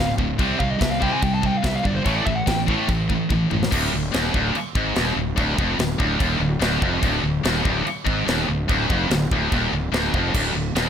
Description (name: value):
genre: heavy metal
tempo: 145 BPM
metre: 4/4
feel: straight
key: D phrygian from 3.7 s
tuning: A4 = 440 Hz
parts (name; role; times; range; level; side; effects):
- smooth overdriven lead guitar; melody; 0.0-2.6 s; C5 to A5; -27 LUFS; equal; ping-pong delay
- heavy high-gain guitar; riff; 0.0-10.9 s; D2 to C4; -24 LUFS; left 12 dB; distortion
- high-gain distorted guitar; riff; 0.0-10.9 s; D2 to C4; -25 LUFS; right 12 dB; distortion
- fuzz fingered electric bass; bass; 0.0-10.9 s; D1 to C2; -26 LUFS; equal; overdrive
- tight metal drum kit; drums; 0.2-10.9 s; china cymbal, crash cymbal, kick drum, snare drum, toms; -25 LUFS; equal; none
room: light reverb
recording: none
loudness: -19 LUFS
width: side -8 dB against mid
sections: 0.0-3.7 A section; 3.7-10.9 B section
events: lead electric guitar solo 0.0-3.7; drum fill 3.3-3.7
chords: 0.4 C5; 2.1 A5; 3.7 Dm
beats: | 0.40 0.81 1.23 1.64 | 2.06 2.47 2.89 3.30 | 3.72 4.13 4.55 4.96 | 5.38 5.79 6.21 6.62 | 7.04 7.45 7.86 8.28 | 8.69 9.11 9.52 9.93 | 10.35 10.76